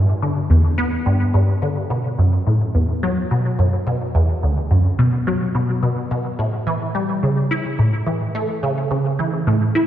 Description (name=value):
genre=ambient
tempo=107 BPM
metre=4/4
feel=straight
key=unclear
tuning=A4 = 440 Hz
part: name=resonant blip pluck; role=solo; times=0.0-9.9 s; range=D2 to E4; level=-16 LUFS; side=equal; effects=phaser, ensemble chorus, analog delay
room=wet lush hall reverb, RT60 2.8 s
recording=dark, warm production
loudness=-17 LUFS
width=side -11 dB against mid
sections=0.0-9.9 A section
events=none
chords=none